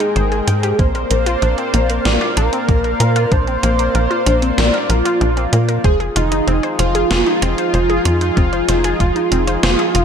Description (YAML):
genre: synthwave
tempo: 95 BPM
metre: 4/4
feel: straight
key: unclear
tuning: A4 = 439 Hz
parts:
  - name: wide unison lead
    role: melody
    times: 0.0-10.0 s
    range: Eb4 to D5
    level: -18 LUFS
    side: right 1 dB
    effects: analog chorus, ping-pong delay
  - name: chorused pulse-width pad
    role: sustained chords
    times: 0.0-10.0 s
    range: Ab3 to G5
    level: -23 LUFS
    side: equal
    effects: sidechain pumping
  - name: wide unison pluck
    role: arpeggios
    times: 0.0-10.0 s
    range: Bb3 to G5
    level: -23 LUFS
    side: left 3 dB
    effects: ping-pong delay
  - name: gated 80s digital drum machine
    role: drums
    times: 0.0-10.0 s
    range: hi-hat, snare drum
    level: -21 LUFS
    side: right 1 dB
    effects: gated reverb, gated reverb snare
  - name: tight sequencer bass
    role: bass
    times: 0.2-10.0 s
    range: F1 to Bb2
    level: -18 LUFS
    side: equal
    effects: sidechain pumping
  - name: electronic kick drum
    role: drums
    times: 0.8-9.1 s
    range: none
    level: -17 LUFS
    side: equal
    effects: none
room: light reverb, digital ambience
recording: none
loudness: -13 LUFS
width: side -7 dB against mid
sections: 0.0-10.0 A section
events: none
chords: 0.0 Abmaj7; 0.8 Bbadd9; 5.8 Fm7